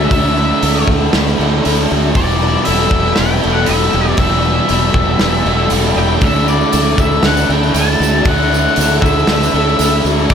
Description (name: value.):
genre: rock, shoegaze and dream pop.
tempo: 118 BPM.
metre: 4/4.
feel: straight.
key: unclear.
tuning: A4 = 440 Hz.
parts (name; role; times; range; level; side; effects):
octave-fuzz lead guitar; melody; 0.0-10.3 s; D5 to A5; -18 LUFS; left 2 dB; distortion, analog delay.
soft string machine; sustained chords; 0.0-10.3 s; D5 to E6; -25 LUFS; equal; ensemble chorus.
picked twelve-string acoustic guitar; arpeggios; 0.0-10.3 s; F#4 to B4; -23 LUFS; left 8 dB; analog chorus, analog delay.
crunchy overdriven guitar; riff; 0.0-10.3 s; E2 to E4; -19 LUFS; left 12 dB; lush chorus.
raw garage guitar; riff; 0.0-10.3 s; E2 to E4; -18 LUFS; right 11 dB; overdrive, reverse reverb.
fuzz fingered electric bass; bass; 0.0-10.3 s; E1 to D2; -17 LUFS; equal; overdrive.
loose indie drum kit; drums; 0.1-10.3 s; hi-hat, kick drum, snare drum; -19 LUFS; equal; none.
tambourine; percussion; 6.4-10.3 s; none; -29 LUFS; right 11 dB; none.
room: light reverb, small room ambience.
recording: none.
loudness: -11 LUFS.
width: side -7 dB against mid.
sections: 0.0-10.3 A section.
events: none.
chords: 0.0 Dsus2; 2.2 Em7; 6.2 Dsus2.